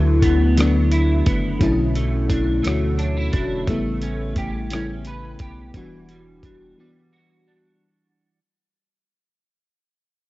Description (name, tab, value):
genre	slow six-eight R&B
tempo	58 BPM (dotted quarters)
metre	6/8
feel	straight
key	unclear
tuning	A4 = 440 Hz
part	electric guitar at the edge of break-up	second line	0.0-8.4 s	B2 to B4	-28 LUFS	right 2 dB	ensemble chorus
part	FM electric piano with soft pad layer	accompaniment	0.0-7.8 s	C#3 to C#5	-22 LUFS	left 2 dB	chorus
part	round analog bass	bass	0.0-6.7 s	E1 to D2	-22 LUFS	equal	none
part	dusty soul sampler-style drum kit	drums	0.2-6.6 s	hi-hat, kick drum, rim click	-23 LUFS	equal	cassette tape
room	little or no reverb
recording	home recording on cassette, nothing above 7.8 kHz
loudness	-18 LUFS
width	side -18 dB against mid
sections	0.0-7.8 A section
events	fade-out 0.0-7.8; break 6.8-7.8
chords	0.0 D69; 1.6 Bm11; 3.7 A9; 5.7 Em9